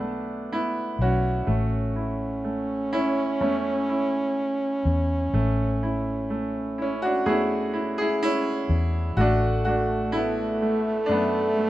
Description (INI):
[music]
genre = acoustic folk-pop ballad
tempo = 62 BPM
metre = 4/4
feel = straight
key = A major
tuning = A4 = 440 Hz
[part]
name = bright baby grand piano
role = melody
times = 0.0-11.7 s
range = A3 to G#4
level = -26 LUFS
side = right 1 dB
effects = none
[part]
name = warm French horn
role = second line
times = 0.0-11.7 s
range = A3 to C#4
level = -27 LUFS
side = right 1 dB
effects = none
[part]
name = vintage muted fingered electric bass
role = bass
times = 0.0-11.7 s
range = A1 to F#2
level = -26 LUFS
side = left 1 dB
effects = none
[sound]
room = light reverb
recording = minimal, uncompressed stereo recording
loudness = -22 LUFS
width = side -15 dB against mid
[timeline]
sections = 0.0-11.7 A section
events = none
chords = 0.0 Bm11; 1.5 A; 9.2 Bm7/A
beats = 0.50 | 1.47 2.44 3.41 4.38 | 5.34 6.30 7.26 8.22 | 9.18 10.14 11.09